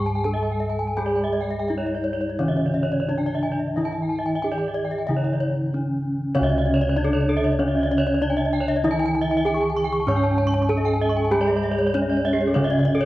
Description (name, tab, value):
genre	Balinese gamelan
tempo	82-97 BPM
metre	4/4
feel	straight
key	C# pelog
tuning	A4 = 440 Hz
part	gamelan-type bronze metallophone	melody	0.0-13.1 s	C#4 to C#5	-24 LUFS	equal	none
part	gamelan-type bronze metallophone	accompaniment	0.0-13.1 s	C#3 to C#4	-28 LUFS	right 1 dB	none
part	gamelan-type bronze metallophone	arpeggios	0.0-13.0 s	G#4-45c to C#6	-28 LUFS	right 3 dB	none
part	gamelan-type bossed gongs	bass	0.0-13.1 s	C#2 to G#4-45c	-26 LUFS	equal	none
part	gamelan-type bronze metallophone	arpeggios	0.1-13.1 s	A4-40c to C#6	-28 LUFS	left 3 dB	none
room	wet recital hall reverb, RT60 1.4 s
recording	worn, warbling old tape, cassette tape, warbly pitch drift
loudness	-20 LUFS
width	side -16 dB against mid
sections	0.0-6.4 A section; 6.4-13.1 B section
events	none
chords	none